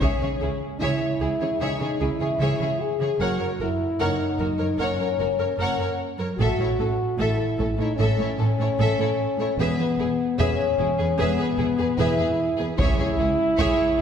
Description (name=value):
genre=cinematic, epic orchestral film score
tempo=75 BPM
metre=4/4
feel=straight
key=C# minor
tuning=A4 = 439 Hz
part: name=warm symphonic violin section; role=melody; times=0.0-14.0 s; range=G#4 to F#5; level=-33 LUFS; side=left 4 dB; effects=none
part: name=rich studio violin section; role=second line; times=0.0-14.0 s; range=C#4 to C#5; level=-33 LUFS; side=left 2 dB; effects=none
part: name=rich studio viola section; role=accompaniment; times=0.0-13.8 s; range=G#4 to A#4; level=-31 LUFS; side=right 1 dB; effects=none
part: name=mellow French horn section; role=sustained chords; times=0.0-14.0 s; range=B3 to G#4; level=-24 LUFS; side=left 2 dB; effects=none
part: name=rich symphonic cello section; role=bass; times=0.0-14.0 s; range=C#2 to C#3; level=-29 LUFS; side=right 2 dB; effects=none
part: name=rich symphonic double bass section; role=bass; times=0.0-14.0 s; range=E1 to C#2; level=-28 LUFS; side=right 2 dB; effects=none
part: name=taiko ensemble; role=drums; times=0.0-1.6, 6.4-8.0, 12.8-14.0 s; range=none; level=-28 LUFS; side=equal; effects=none
part: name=timpani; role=percussion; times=12.8-13.9 s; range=C#3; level=-34 LUFS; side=left 1 dB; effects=none
room=wet scoring stage reverb, RT60 1.5 s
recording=heard from further back in the room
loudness=-21 LUFS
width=side -8 dB against mid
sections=0.0-14.0 A section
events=none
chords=0.0 C#m; 3.2 F#; 6.4 A; 9.6 E; 12.8 C#m